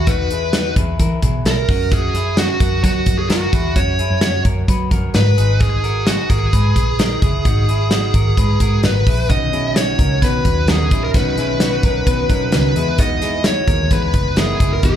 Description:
jangly indie pop; 130 BPM; 4/4; straight; F# mixolydian; A4 = 440 Hz
fuzz lead guitar; melody; 0.0-15.0 s; F#4 to D#5; -20 LUFS; equal; distortion, slapback echo
electric guitar through a small old amp; arpeggios; 0.0-15.0 s; C#4 to C#5; -26 LUFS; left 2 dB; plate reverb, slapback echo
vintage muted picked electric bass; bass; 0.0-15.0 s; E1 to F#3; -19 LUFS; equal
modern studio drum kit; drums; 0.1-14.9 s; hi-hat, kick drum, snare drum; -17 LUFS; equal
fingerpicked plugged-in steel-string acoustic guitar; accompaniment; 9.3-15.0 s; B2 to D#4; -24 LUFS; right 4 dB; plate reverb, slapback echo
light reverb; live gig heard through the venue's PA, club reverb; -14 LUFS; side -10 dB against mid
0.0-15.0 A section
0.0 Emaj7; 1.7 F#7; 5.4 G#madd9; 9.3 Badd9; 12.8 Emaj7
| 0.07 0.54 0.99 1.46 | 1.92 2.38 2.84 3.30 | 3.76 4.22 4.68 5.14 | 5.61 6.07 6.53 6.99 | 7.45 7.91 8.38 8.84 | 9.30 9.76 10.22 10.68 | 11.14 11.61 12.07 12.53 | 12.99 13.45 13.91 14.38 | 14.84

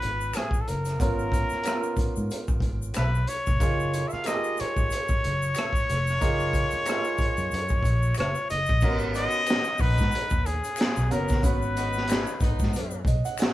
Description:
R&B, neo-soul; 92 BPM; 4/4; swing 55% on 16ths; G# dorian; A4 = 440 Hz
trumpet with straight mute; melody; 0.0-12.7 s; G#4 to E#5; -28 LUFS; left 1 dB
warm grand piano; accompaniment; 0.0-13.5 s; A#3 to G#5; -33 LUFS; right 2 dB
vintage muted fingered electric bass; bass; 0.0-13.2 s; E#1 to G#2; -28 LUFS; equal
crunchy breakbeat drum kit; drums; 0.0-13.5 s; crash cymbal, handclaps, hi-hat, kick drum, rim click, snare drum; -27 LUFS; equal
tube shaker and finger snaps; percussion; 0.2-13.5 s; -42 LUFS; left 4 dB
warm horn section; stabs; 9.1-13.0 s; D#3 to F#4; -36 LUFS; left 2 dB
moderate studio reverb, RT60 0.9 s; band playing live in one room; -23 LUFS; side -15 dB against mid
0.0-8.8 A section; 8.8-13.5 B section
grand piano fill 12.7-13.5
0.0 G#m69; 3.6 F#maj9; 8.8 G#m9
0.34 | 0.99 1.65 2.30 2.95 | 3.60 4.25 4.91 5.56 | 6.21 6.86 7.52 8.17 | 8.82 9.47 10.12 10.78 | 11.43 12.08 12.73 13.39

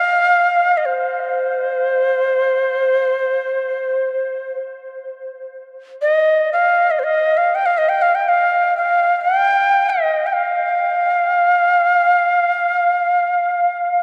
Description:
world meditative, free-time meditation music; free time; A4 = 441 Hz
Native American-style cedar flute; melody; 0.0-14.0 s; C5 to G5; -17 LUFS; equal; tape echo
crotales; texture; 0.0-3.9 s; barely audible
wet huge ambient reverb, RT60 7.9 s; dark, warm production; -17 LUFS; mono
0.0-14.0 A section
free time

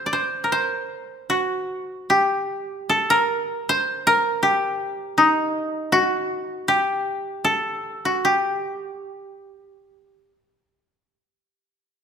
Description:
celtic folk; 47-83 BPM; 3/4; rubato; G harmonic minor; A4 = 440 Hz
koto; solo; 0.0-10.3 s; Eb4 to D5; -20 LUFS; equal
light reverb; minimal, uncompressed stereo recording; -20 LUFS; side -7 dB against mid
0.0-11.3 A section
slowing down 5.9-11.3
0.51 | 1.30 2.11 2.90 | 3.67 4.41 5.15 | 5.90 6.63 7.40 | 8.22 9.10 10.13

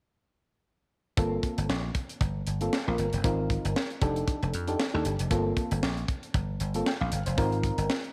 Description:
early-eighties boogie funk; 116 BPM; 4/4; swing 56% on 16ths; G minor; A4 = 440 Hz
mellow FM electric piano; accompaniment; 1.2-7.9 s; Bb3 to G5; -34 LUFS; equal; chorus
dry thumbed slap bass; bass; 1.2-7.9 s; F1 to F2; -32 LUFS; equal
tight funk drum kit; drums; 1.2-8.1 s; hi-hat, kick drum, snare drum; -34 LUFS; equal
moderate echo chamber reverb, RT60 1.9 s; -29 LUFS; mono
1.2-8.1 A section
1.2 Gm11; 3.2 Ab69; 4.0 F13; 5.3 Gm11; 7.4 Ab69
| 1.17 1.69 2.21 2.72 | 3.24 3.76 4.28 4.79 | 5.31 5.83 6.34 6.86 | 7.38 7.90

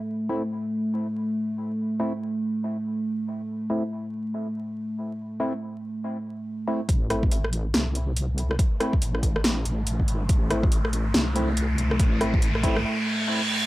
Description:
deep dubstep; 141 BPM; 4/4; swing 61% on 16ths, half-time; A minor; A4 = 439 Hz
dark analog pad; sustained chords; 0.0-13.7 s; A3; -29 LUFS; equal; chorus
percussive organ stab; stabs; 0.3-12.8 s; A3 to E4; -30 LUFS; equal; wide subtle chorus, dub echo
wobble bass; bass; 6.9-12.8 s; A1 to C2; -26 LUFS; equal; chorus, transformer saturation
deep house drum kit; drums; 6.9-12.8 s; hi-hat, rim click, snare drum; -26 LUFS; equal; overdrive, small room ambience
electronic kick drum; drums; 6.9-12.7 s; -22 LUFS; equal; overdrive, small room ambience
riser and reverse cymbal; sound effects; 8.1-13.7 s; -31 LUFS; equal
little or no reverb; dry, gritty hardware recording, vinyl crackle; -23 LUFS; side -17 dB against mid
0.0-6.9 A section; 6.9-13.7 B section
build-up 6.9-13.7; filter sweep on synth stab 6.9-13.7; filter sweep on analog synth pad 6.9-13.7; riser 8.1-13.7; break 12.8-13.7; reverse cymbal 12.8-13.7
0.0 Am
| 0.08 0.51 0.93 1.36 | 1.78 2.21 2.63 3.06 | 3.48 3.91 4.34 4.76 | 5.19 5.61 6.04 6.46 | 6.89 7.32 7.74 8.17 | 8.59 9.02 9.44 9.87 | 10.29 10.72 11.14 11.57 | 12.00 12.42 12.85 13.27

